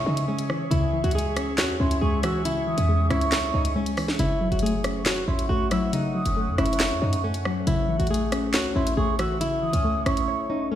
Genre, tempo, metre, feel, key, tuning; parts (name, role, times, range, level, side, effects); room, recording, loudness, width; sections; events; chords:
hip hop, drill; 138 BPM; 4/4; half-time; C# minor; A4 = 440 Hz
flamenco guitar; melody; 0.0-10.8 s; C#4 to G#4; -29 LUFS; equal; low-pass filter, digital delay
mellow hollow concert flute; second line; 0.0-10.7 s; B#5 to E6; -31 LUFS; right 5 dB; digital delay
soft round pluck; accompaniment; 0.0-10.8 s; C#3 to C#5; -28 LUFS; left 2 dB; chorus, low-pass filter
deep dark ambient pad; sustained chords; 0.0-10.8 s; A3 to C#6; -34 LUFS; equal; chorus, built-in reverb
short 808-style bass; bass; 0.0-10.3 s; F#1 to C#3; -26 LUFS; equal
drill drum kit; drums; 0.2-10.3 s; handclaps, hi-hat, rim click, snare drum; -27 LUFS; equal
little or no reverb; played on a big sound system in a bare room, stone room reverb; -22 LUFS; side -11 dB against mid
0.0-10.8 A section
break 10.3-10.8
0.0 C#m; 4.2 F#m; 7.7 A